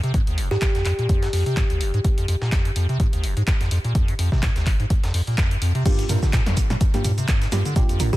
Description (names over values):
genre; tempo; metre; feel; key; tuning
acid house; 126 BPM; 4/4; swing 56% on 16ths; G phrygian; A4 = 440 Hz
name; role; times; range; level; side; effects
acid bass, square; riff; 0.0-8.2 s; F1 to D3; -22 LUFS; equal; overdrive, wide subtle chorus, digital delay
punchy analog drum machine; drums; 0.0-8.2 s; crash cymbal, handclaps, hi-hat, shaker, snare drum, toms; -28 LUFS; equal; none
breakbeat sampler-style drum kit; drums; 0.1-8.2 s; hi-hat, snare drum; -38 LUFS; equal; none
electronic kick drum; drums; 0.1-8.2 s; none; -20 LUFS; equal; none
kalimba; melody; 0.5-0.7, 8.1-8.2 s; G4; -30 LUFS; equal; tape echo
deep mellow chord stab; stabs; 5.9-8.1 s; Bb3 to Bb4; -29 LUFS; right 3 dB; chorus, cassette tape, digital delay
room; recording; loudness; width
little or no reverb; dense, heavily limited modern master; -19 LUFS; side -17 dB against mid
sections
0.0-5.9 A section; 5.9-8.2 B section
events
drop 5.9-8.2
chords
0.0 N.C.; 5.9 Gm7